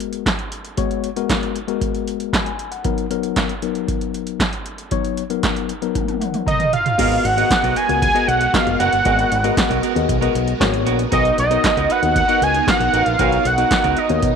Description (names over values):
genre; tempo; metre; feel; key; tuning
early-eighties boogie funk; 116 BPM; 4/4; straight; G# minor; A4 = 440 Hz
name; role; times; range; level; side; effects
tine electric piano; accompaniment; 0.0-14.3 s; F#3 to B5; -22 LUFS; left 13 dB; none
electro analog drum machine; drums; 0.0-14.3 s; crash cymbal, handclaps, hi-hat, kick drum, snare drum, toms; -22 LUFS; right 2 dB; overdrive
fat analog lead; melody; 6.5-14.4 s; D#5 to G#5; -17 LUFS; right 2 dB; slapback echo
phased string machine; sustained chords; 7.0-14.4 s; G#3 to A#4; -28 LUFS; right 2 dB; ensemble chorus, phaser
clean electric guitar; riff; 7.0-14.3 s; B3 to B4; -25 LUFS; right 14 dB; wide subtle chorus
fingered electric bass with an envelope filter; bass; 7.0-14.3 s; F#1 to B2; -22 LUFS; right 2 dB; none
room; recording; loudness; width
moderate spring reverb, RT60 2.4 s; 1960s-style stereo with parts hard left and right; -16 LUFS; side -6 dB against mid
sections
0.0-7.0 A section; 7.0-14.4 B section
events
drum fill 6.0-7.0; tine electric piano fill 6.0-7.0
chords
0.0 G#m9; 2.8 Bmaj7; 7.0 G#m9; 11.1 Bmaj7